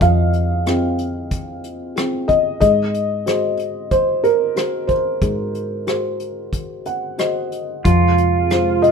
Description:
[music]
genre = acoustic folk-pop ballad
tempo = 92 BPM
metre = 4/4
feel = straight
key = unclear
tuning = A4 = 440 Hz
[part]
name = felt-muted upright piano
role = melody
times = 0.0-8.9 s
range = F3 to Gb5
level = -18 LUFS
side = left 1 dB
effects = none
[part]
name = vintage muted fingered electric bass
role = bass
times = 0.0-8.9 s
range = F2 to Ab2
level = -20 LUFS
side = equal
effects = none
[part]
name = vintage brush drum kit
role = drums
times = 0.0-8.9 s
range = hi-hat, kick drum, rim click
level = -23 LUFS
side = equal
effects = none
[part]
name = pedal steel guitar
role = second line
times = 7.8-8.9 s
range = F4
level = -19 LUFS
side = right 8 dB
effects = none
[part]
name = warm analog pad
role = sustained chords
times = 7.9-8.9 s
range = C3 to F4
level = -21 LUFS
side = right 5 dB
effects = chorus
[sound]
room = light reverb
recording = minimal, uncompressed stereo recording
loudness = -16 LUFS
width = side -6 dB against mid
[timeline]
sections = 0.0-7.8 A section; 7.8-8.9 B section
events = felt piano fill 6.5-7.8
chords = 0.0 Fm; 2.6 Ab7; 7.8 Fm

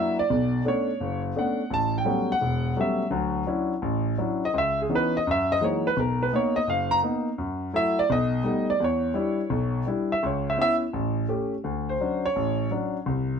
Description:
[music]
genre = solo jazz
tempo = 169 BPM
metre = 4/4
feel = swing 66% on 8ths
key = B minor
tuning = A4 = 440 Hz
[part]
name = warm grand piano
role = solo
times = 0.0-13.4 s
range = E1 to A#5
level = -23 LUFS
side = equal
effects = none
[sound]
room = light reverb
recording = none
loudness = -23 LUFS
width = side -6 dB against mid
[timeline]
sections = 0.3-11.6 A section; 11.6-13.4 A section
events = grand piano solo 0.0-11.6, 11.6-13.4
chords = 0.3 Bm9; 1.7 A13; 3.1 Dmaj9; 4.5 C#m9; 5.3 F#13; 6.0 Bmaj7; 7.4 F#m7; 8.1 Baug7; 8.8 Em7; 10.2 C#m7; 10.9 A7; 11.6 Dmaj7

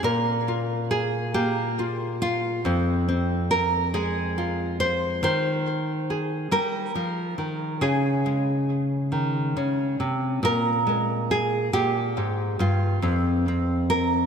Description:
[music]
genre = folk, solo fingerstyle acoustic guitar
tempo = 46 BPM (dotted quarters)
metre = 6/8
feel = straight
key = F minor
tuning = A4 = 439 Hz
[part]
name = nylon-string guitar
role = solo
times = 0.0-14.3 s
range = F2 to C5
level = -22 LUFS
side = equal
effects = ping-pong delay
[sound]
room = moderate plate reverb, RT60 3.5 s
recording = dreamy mix soaked in reverb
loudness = -22 LUFS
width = side -7 dB against mid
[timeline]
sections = 0.0-14.3 A section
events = none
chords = 0.0 Bb5; 2.6 Fm; 5.2 Ebsus4; 7.8 Db5; 10.4 Fmadd11; 13.0 F5

